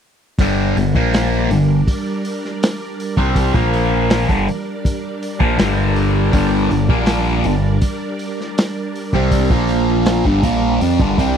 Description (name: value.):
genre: psychedelic rock.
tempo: 80 BPM.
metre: 4/4.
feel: straight.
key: G minor.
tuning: A4 = 440 Hz.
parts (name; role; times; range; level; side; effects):
string machine, violas; sustained chords; 0.4-11.4 s; F3 to F5; -25 LUFS; right 2 dB; ensemble chorus.
fuzz guitar; riff; 0.4-11.4 s; G2 to C4; -16 LUFS; equal; distortion, phaser.
growling picked electric bass; bass; 0.4-11.4 s; G1 to F2; -20 LUFS; equal; overdrive.
vintage drum kit; drums; 0.4-11.4 s; hi-hat, kick drum, snare drum; -18 LUFS; equal; none.
room: little or no reverb.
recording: dry, close 1970s-style studio recording.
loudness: -14 LUFS.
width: side -8 dB against mid.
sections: 0.4-11.4 A section.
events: none.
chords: 0.4 Gm; 3.5 Bb5; 4.3 Gm; 9.5 Bb5; 10.3 Gm.